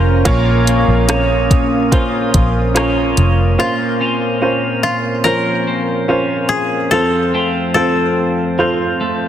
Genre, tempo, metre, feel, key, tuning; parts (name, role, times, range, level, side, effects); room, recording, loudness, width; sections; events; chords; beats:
pop ballad; 72 BPM; 4/4; straight; Bb minor; A4 = 440 Hz
clear upright piano; accompaniment; 0.0-9.3 s; Bb2 to Db5; -17 LUFS; right 2 dB
glassy FM pad; sustained chords; 0.0-3.6 s; Db4 to Eb6; -23 LUFS; right 1 dB; ensemble chorus, built-in reverb
twelve-string electric guitar; arpeggios; 0.0-9.3 s; F2 to F4; -20 LUFS; left 1 dB
vintage muted fingered electric bass; bass; 0.0-3.6 s; F1 to Bb1; -15 LUFS; equal
smooth R&B drum kit; drums; 0.3-3.4 s; hi-hat, kick drum, rim click; -17 LUFS; equal
koto; melody; 3.6-9.3 s; F4 to Bb4; -19 LUFS; left 3 dB
moderate lush hall reverb, RT60 2.6 s; dense, heavily limited modern master; -13 LUFS; side -10 dB against mid
0.0-3.6 A section; 3.6-9.3 B section
0.0 Bbm; 3.6 Bbmadd9; 6.9 F
| 0.25 1.09 1.92 2.75 | 3.59 4.42 5.25 6.09 | 6.92 7.75 8.59